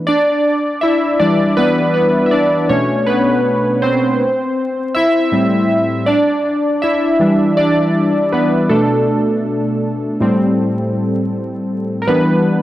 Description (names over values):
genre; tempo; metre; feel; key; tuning
hip hop; 80 BPM; 4/4; swing 66% on 16ths; E minor; A4 = 441 Hz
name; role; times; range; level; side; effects
warm analog keys; solo; 0.0-12.6 s; A2 to E5; -13 LUFS; equal; chorus, cassette tape, low-pass filter
room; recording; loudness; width
moderate plate reverb, RT60 2.8 s; dark, warm production, vinyl crackle; -13 LUFS; side -14 dB against mid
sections
0.1-12.6 A section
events
synth keys solo 0.1-12.6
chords
0.1 Em7; 2.7 Bm7; 4.2 Am7; 6.1 Em7; 8.7 Bm7; 10.2 Am7; 12.1 Em7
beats
| 0.06 0.81 1.56 2.31 | 3.06 3.81 4.56 5.31 | 6.06 6.81 7.56 8.31 | 9.06 9.81 10.56 11.31 | 12.06